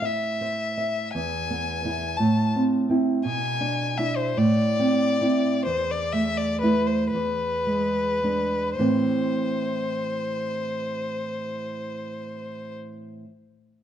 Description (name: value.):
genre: romantic duo for violin and classical guitar.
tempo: 34-57 BPM (dotted quarters).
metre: 6/8.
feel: rubato.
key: A minor.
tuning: A4 = 440 Hz.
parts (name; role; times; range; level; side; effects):
rich violin; melody; 0.0-12.7 s; B4 to A5; -27 LUFS; left 3 dB; none.
nylon-string guitar; accompaniment; 0.0-13.3 s; E2 to E5; -25 LUFS; right 2 dB; none.
room: moderate recital hall reverb, RT60 1.4 s.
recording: dark, warm production.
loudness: -22 LUFS.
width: side -10 dB against mid.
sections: 0.0-8.8 A section; 8.8-12.0 B section.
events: slowing down 2.2-8.8.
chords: 0.0 Am; 1.1 E; 2.2 Am; 3.2 E7/B; 4.4 Am; 5.7 A5/E; 7.1 E7; 8.8 Am.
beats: 0.02 | 1.13 2.19 | 3.25 4.37 | 5.66 7.12 | 8.80 10.38.